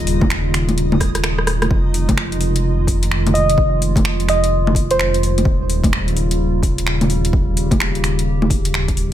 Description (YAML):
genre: future garage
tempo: 128 BPM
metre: 4/4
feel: swing 63% on 16ths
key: F minor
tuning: A4 = 438 Hz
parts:
  - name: warbly tape-like pad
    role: sustained chords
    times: 0.0-9.1 s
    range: Db3 to G4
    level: -23 LUFS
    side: right 1 dB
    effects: chorus, built-in reverb, sidechain pumping
  - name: dark detuned saw bass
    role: bass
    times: 0.0-9.1 s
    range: Eb1 to F1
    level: -19 LUFS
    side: equal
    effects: sidechain pumping
  - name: backwards swelling texture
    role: texture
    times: 0.0-1.7 s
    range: Eb4 to Eb5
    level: -33 LUFS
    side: left 1 dB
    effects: built-in reverb
  - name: deep house drum kit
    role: drums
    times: 0.1-9.1 s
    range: bongos, finger snaps, hi-hat, rim click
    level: -20 LUFS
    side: left 1 dB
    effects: overdrive, studio reverb
  - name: electronic kick drum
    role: drums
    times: 0.2-9.0 s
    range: none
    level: -19 LUFS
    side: equal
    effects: overdrive, studio reverb
  - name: soft struck synth lead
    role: melody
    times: 3.3-5.2 s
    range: C5 to Eb5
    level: -20 LUFS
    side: right 1 dB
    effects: chorus, ping-pong delay
room: digital ambience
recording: none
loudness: -15 LUFS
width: side -11 dB against mid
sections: 0.0-1.7 A section; 1.7-9.1 A section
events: drum fill 1.0-1.7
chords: 0.0 Eb9; 1.7 Fm7; 5.5 Eb9